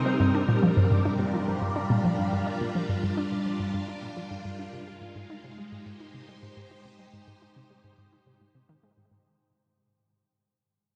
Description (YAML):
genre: ambient, sequencer-driven space music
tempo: 106 BPM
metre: 4/4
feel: straight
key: unclear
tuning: A4 = 439 Hz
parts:
  - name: phased string machine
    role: sustained chords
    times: 0.0-9.3 s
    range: C3 to C5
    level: -32 LUFS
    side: equal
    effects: ensemble chorus, phaser
  - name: analog pluck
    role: riff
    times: 0.1-9.2 s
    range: G2 to Eb4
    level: -29 LUFS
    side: equal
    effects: chorus, delay
room: wet cathedral reverb, RT60 5.7 s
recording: in a vast, echoing space, cassette tape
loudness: -27 LUFS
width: mono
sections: 0.0-9.3 A section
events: fade-out 0.0-9.3; filter sweep on synth arpeggio sound 0.0-9.3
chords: 0.2 Gm7; 4.7 Abmaj7